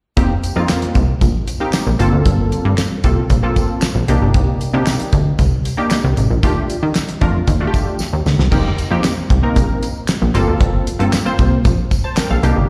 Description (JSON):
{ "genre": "early-eighties boogie funk", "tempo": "115 BPM", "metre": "4/4", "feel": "straight", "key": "G minor", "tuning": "A4 = 441 Hz", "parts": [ { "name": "funky polysynth comp", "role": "accompaniment", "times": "0.2-12.7 s", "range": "A3 to A5", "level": "-23 LUFS", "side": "equal", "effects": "chorus, slapback echo" }, { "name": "plucky analog bass", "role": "bass", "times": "0.2-12.7 s", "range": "F1 to Eb3", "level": "-17 LUFS", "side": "equal", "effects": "none" }, { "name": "damped 70s drum kit", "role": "drums", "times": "0.2-12.6 s", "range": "crash cymbal, handclaps, hi-hat, kick drum, snare drum", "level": "-20 LUFS", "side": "equal", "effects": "none" }, { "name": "tambourine", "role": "percussion", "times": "0.4-12.6 s", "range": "none", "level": "-36 LUFS", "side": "equal", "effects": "none" } ], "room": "light reverb, small room ambience", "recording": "live gig heard through the venue's PA, recital hall reverb", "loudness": "-16 LUFS", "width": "mono", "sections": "0.2-8.5 A section; 8.5-12.7 B section", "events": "drum fill 8.0-8.5", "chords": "0.2 F9sus4; 2.0 Gm11; 4.1 Cm9; 6.4 Ebmaj9#11; 8.5 F9sus4; 10.3 Gm11", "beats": "| 0.17 0.69 1.21 1.74 | 2.26 2.78 3.30 3.82 | 4.34 4.87 5.39 5.91 | 6.43 6.95 7.47 8.00 | 8.52 9.04 9.56 10.08 | 10.61 11.13 11.65 12.17" }